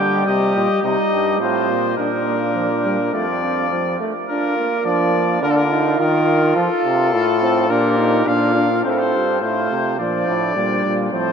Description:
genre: classical, imitative canzona for brass ensemble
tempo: 105 BPM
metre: 4/4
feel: straight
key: Bb major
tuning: A4 = 440 Hz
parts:
  - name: clear trumpet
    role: melody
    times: 0.0-11.3 s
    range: A4 to G5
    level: -22 LUFS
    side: left 4 dB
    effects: none
  - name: warm flugelhorn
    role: second line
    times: 0.0-11.3 s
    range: C4 to A4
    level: -22 LUFS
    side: right 2 dB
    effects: none
  - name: clear trombone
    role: accompaniment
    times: 0.0-11.3 s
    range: F3 to F4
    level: -21 LUFS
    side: right 1 dB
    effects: none
  - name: clear euphonium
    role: bass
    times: 0.0-11.3 s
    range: F2 to F3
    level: -22 LUFS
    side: equal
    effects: none
room: wet huge ambient reverb, RT60 8.3 s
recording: in a vast, echoing space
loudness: -16 LUFS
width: side -6 dB against mid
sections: 0.0-4.3 A section; 4.3-8.8 B section; 8.8-11.3 A section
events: none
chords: 0.0 Cm; 2.0 Bb; 3.1 F; 4.3 Bb; 5.4 Bb/D; 6.6 F; 7.7 Bb; 8.8 F; 10.0 Bb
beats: 0.27 0.84 1.41 | 1.98 2.56 3.14 3.71 | 4.29 4.86 5.43 6.00 | 6.57 7.13 7.70 8.27 | 8.84 9.41 9.98 10.55 | 11.12

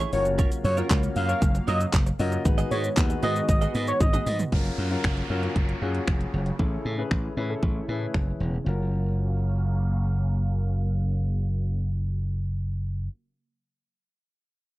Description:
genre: dance-pop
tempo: 116 BPM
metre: 4/4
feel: straight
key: F# major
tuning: A4 = 440 Hz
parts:
  - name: filtered supersaw swell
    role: sustained chords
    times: 0.0-13.1 s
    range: C#3 to E#5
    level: -36 LUFS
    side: right 1 dB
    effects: sidechain pumping, low-pass filter
  - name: direct-recorded clean electric guitar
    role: riff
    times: 0.0-4.4 s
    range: A3 to D#5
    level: -33 LUFS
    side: right 7 dB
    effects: lush chorus
  - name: slap bass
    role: bass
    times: 0.0-13.1 s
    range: E1 to A2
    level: -26 LUFS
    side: equal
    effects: sidechain pumping
  - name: pop drum kit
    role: drums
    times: 0.0-8.3 s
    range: finger snaps, handclaps, hi-hat, kick drum, shaker, toms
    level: -25 LUFS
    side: equal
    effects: none
  - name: octave-doubled lead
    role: melody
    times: 0.1-4.4 s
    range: C#5 to E#5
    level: -27 LUFS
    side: equal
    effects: chorus, sidechain pumping, slapback echo
  - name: warm concert grand piano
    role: accompaniment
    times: 0.1-13.1 s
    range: B3 to D#5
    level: -32 LUFS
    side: left 4 dB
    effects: sidechain pumping, low-pass filter
  - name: downlifter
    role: sound effects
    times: 4.5-8.7 s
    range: none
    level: -39 LUFS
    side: right 1 dB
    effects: none
room: little or no reverb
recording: dry, close 1970s-style studio recording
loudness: -23 LUFS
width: side -17 dB against mid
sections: 0.0-4.5 A section; 4.5-8.7 B section; 8.7-12.8 C section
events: drop 0.0-4.5; drum fill 4.0-4.5; filter sweep 4.5-8.7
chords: 0.1 F#maj7; 2.5 G#m7; 4.5 F#maj7; 6.6 Amaj7; 8.7 F#maj7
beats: | 0.39 0.90 1.42 1.94 | 2.45 2.97 3.49 4.01 | 4.52 5.04 5.56 6.08 | 6.59 7.11 7.63 8.14 | 8.66 9.18 9.70 10.21 | 10.73 11.25 11.76 12.28

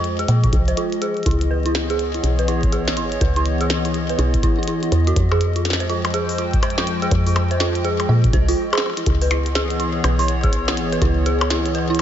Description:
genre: IDM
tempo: 123 BPM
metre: 4/4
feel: swing 62% on 16ths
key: unclear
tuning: A4 = 441 Hz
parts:
  - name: hollow soft pad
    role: sustained chords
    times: 0.0-12.0 s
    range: Fb3 to G5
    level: -25 LUFS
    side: left 2 dB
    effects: chorus
  - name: woody FM bass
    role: bass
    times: 0.0-12.0 s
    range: Ab1 to Bb2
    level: -20 LUFS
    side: equal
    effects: none
  - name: glitchy drum kit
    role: drums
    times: 0.0-12.0 s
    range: hi-hat, percussion blips, snare drum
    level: -26 LUFS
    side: left 2 dB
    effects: ping-pong delay
  - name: dark detuned synth bell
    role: arpeggios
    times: 0.2-11.9 s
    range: Fb4 to C5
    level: -23 LUFS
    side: right 2 dB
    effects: chorus, phaser, low-pass filter, ping-pong delay
  - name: electronic kick drum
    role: drums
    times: 0.4-11.1 s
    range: none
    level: -21 LUFS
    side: equal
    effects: none
room: little or no reverb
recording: nothing above 7.6 kHz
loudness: -17 LUFS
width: side -10 dB against mid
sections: 0.0-12.0 A section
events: filter sweep on synth bell 0.0-12.0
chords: 0.0 Fm9; 1.0 Dbm9; 5.2 Fm9; 8.8 Dbm9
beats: 0.28 0.77 | 1.26 1.75 2.24 2.72 | 3.21 3.70 4.19 4.67 | 5.16 5.65 6.14 6.63 | 7.11 7.60 8.09 8.58 | 9.06 9.55 10.04 10.53 | 11.02 11.50 11.99

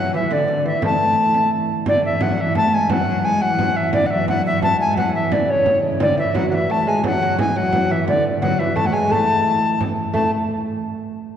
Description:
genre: medieval dance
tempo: 116 BPM (dotted quarters)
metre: 6/8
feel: straight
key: unclear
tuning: A4 = 440 Hz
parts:
  - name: tenor recorder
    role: melody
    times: 0.0-10.3 s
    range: C#5 to A5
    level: -19 LUFS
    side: left 1 dB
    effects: none
  - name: lute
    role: second line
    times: 0.0-1.5, 6.0-10.3 s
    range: D3 to A3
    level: -25 LUFS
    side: right 2 dB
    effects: none
  - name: warm viola da gamba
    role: second line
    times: 0.0-10.3 s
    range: C#3 to A3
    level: -24 LUFS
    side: equal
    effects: none
  - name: pipe organ, sparkling flutes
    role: drone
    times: 0.0-10.2 s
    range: A2 to E3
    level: -28 LUFS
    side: left 1 dB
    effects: none
  - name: frame drum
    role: percussion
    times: 0.3-10.3 s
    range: none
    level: -25 LUFS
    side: right 2 dB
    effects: none
room: wet church reverb, RT60 2.9 s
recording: band playing live in one room, nothing above 10.4 kHz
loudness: -16 LUFS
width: side -9 dB against mid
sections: 0.0-1.9 A section; 1.9-10.1 B section; 10.1-11.2 C section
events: none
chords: none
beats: 0.31 | 0.83 1.34 | 1.86 2.38 | 2.90 3.42 | 3.94 4.45 | 4.97 5.49 | 6.01 6.53 | 7.04 7.56 | 8.08 8.60 | 9.11 9.63 | 10.15

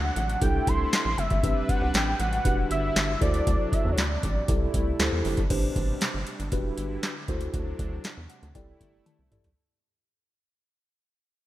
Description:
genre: early-eighties boogie funk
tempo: 118 BPM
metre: 4/4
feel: straight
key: A dorian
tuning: A4 = 440 Hz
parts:
  - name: fat analog lead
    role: melody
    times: 0.0-5.0 s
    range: C#5 to C6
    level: -30 LUFS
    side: equal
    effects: chorus
  - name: warm analog pad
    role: sustained chords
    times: 0.0-9.6 s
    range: B2 to B4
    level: -37 LUFS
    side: right 1 dB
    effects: chorus, tremolo
  - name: rubbery square bass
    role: bass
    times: 0.0-9.5 s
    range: E1 to E2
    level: -29 LUFS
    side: equal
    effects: none
  - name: booming analog drum machine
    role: drums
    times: 0.2-9.6 s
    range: crash cymbal, handclaps, hi-hat, kick drum, snare drum, toms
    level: -27 LUFS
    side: equal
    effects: overdrive, gated reverb
  - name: mellow tine electric piano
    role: accompaniment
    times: 0.4-9.5 s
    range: C4 to A5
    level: -32 LUFS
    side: equal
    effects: medium stereo tremolo
room: light reverb, digital ambience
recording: bright 1980s-style digital production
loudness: -24 LUFS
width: side -15 dB against mid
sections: 0.0-5.5 A section; 5.5-9.6 B section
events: fade-out 5.5-9.6; tine electric piano fill 8.0-9.6; drum fill 9.1-9.6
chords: 0.4 C6; 1.4 Am11; 2.5 Em7; 3.2 D7; 4.5 C6; 5.0 D7sus4; 5.5 Am11; 6.5 Em7; 7.3 D7; 8.6 C6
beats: 0.42 0.93 | 1.44 1.94 2.45 2.96 | 3.47 3.98 4.49 4.99 | 5.50 6.01 6.52 7.03 | 7.54 8.04 8.55 9.06

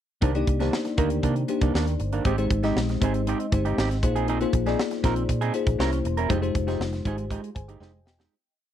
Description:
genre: polished 1980s jazz-funk pop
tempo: 119 BPM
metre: 4/4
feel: straight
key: C minor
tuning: A4 = 441 Hz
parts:
  - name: bell-like FM electric piano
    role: accompaniment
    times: 0.2-8.5 s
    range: Ab3 to Ab5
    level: -27 LUFS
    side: left 4 dB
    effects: lush chorus
  - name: electric guitar at the edge of break-up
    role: riff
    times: 0.2-8.3 s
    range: Eb3 to Bb4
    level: -30 LUFS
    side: right 8 dB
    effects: wide subtle chorus
  - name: vintage muted fingered electric bass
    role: bass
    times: 0.2-8.3 s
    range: E1 to C3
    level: -27 LUFS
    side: equal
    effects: none
  - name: tight funk drum kit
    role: drums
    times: 0.2-8.3 s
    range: hi-hat, kick drum, snare drum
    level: -27 LUFS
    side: equal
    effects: none
room: little or no reverb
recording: dry, close 1970s-style studio recording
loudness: -22 LUFS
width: side -10 dB against mid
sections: 0.2-8.3 verse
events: fade-out 6.3-8.3; FM electric piano fill 7.3-8.3; drum fill 7.8-8.3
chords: 0.2 Cm9; 2.3 Abmaj7; 4.0 Bb9sus4; 5.8 C7b9; 6.3 Fm9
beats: | 0.22 0.73 1.24 1.75 | 2.25 2.76 3.27 3.77 | 4.28 4.78 5.29 5.79 | 6.29 6.80 7.30 7.81

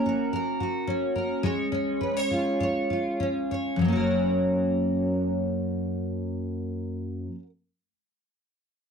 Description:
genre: pop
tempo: 95-110 BPM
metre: 4/4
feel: swing 55% on 16ths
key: F# major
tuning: A4 = 437 Hz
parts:
  - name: picked steel-string acoustic guitar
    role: accompaniment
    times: 0.0-7.5 s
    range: F#2 to C#5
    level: -24 LUFS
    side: equal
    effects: double-tracked left and right
room: light reverb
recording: dark, warm production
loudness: -25 LUFS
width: side -6 dB against mid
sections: 0.0-3.8 A section; 3.8-8.9 B section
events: slowing down 0.0-3.8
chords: 0.0 F#/A#; 1.4 C#/G#; 3.8 F#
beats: 0.33 0.88 | 1.44 2.01 2.60 3.20 | 3.82 4.45 5.09 5.72 | 6.35 6.99

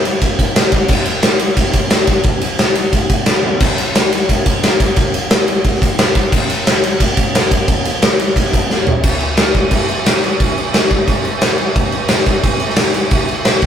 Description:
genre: metal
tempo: 177 BPM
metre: 4/4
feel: straight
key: none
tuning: none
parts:
  - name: big rock drum kit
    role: drums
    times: 0.1-13.7 s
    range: crash cymbal, kick drum, ride cymbal, snare drum, splash cymbal, toms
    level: -12 LUFS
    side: equal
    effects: none
room: light reverb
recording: rough rehearsal-room recording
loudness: -12 LUFS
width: side -9 dB against mid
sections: 0.0-9.0 A section; 9.0-13.7 B section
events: drum fill 3.4, 8.7-9.0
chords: none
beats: 0.21 0.55 | 0.89 1.23 1.57 1.91 | 2.25 2.58 2.92 3.26 | 3.60 3.94 4.28 4.62 | 4.96 5.30 5.64 5.98 | 6.32 6.66 7.00 7.34 | 7.68 8.02 8.36 8.70 | 9.04 9.38 9.71 10.05 | 10.39 10.73 11.07 11.41 | 11.75 12.09 12.43 12.77 | 13.11 13.45

